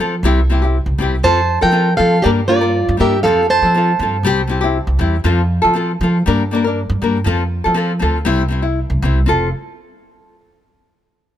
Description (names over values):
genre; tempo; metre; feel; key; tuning
highlife guitar band; 119 BPM; 4/4; straight; F major; A4 = 439 Hz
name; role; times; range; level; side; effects
nylon-string guitar; accompaniment; 0.0-9.5 s; F3 to Bb4; -18 LUFS; left 3 dB; none
upright bass; bass; 0.0-9.5 s; F1 to F3; -17 LUFS; right 1 dB; none
fingerpicked plugged-in swing-style acoustic guitar; melody; 1.2-5.0 s; F4 to A5; -14 LUFS; right 2 dB; none
room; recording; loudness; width
light reverb; none; -13 LUFS; side -11 dB against mid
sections
0.0-9.3 A section; 9.3-11.3 B section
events
none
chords
0.2 C; 1.2 F; 2.2 Gm; 3.2 F; 4.2 C; 5.3 F; 6.3 Gm; 7.3 F; 8.3 C; 9.3 F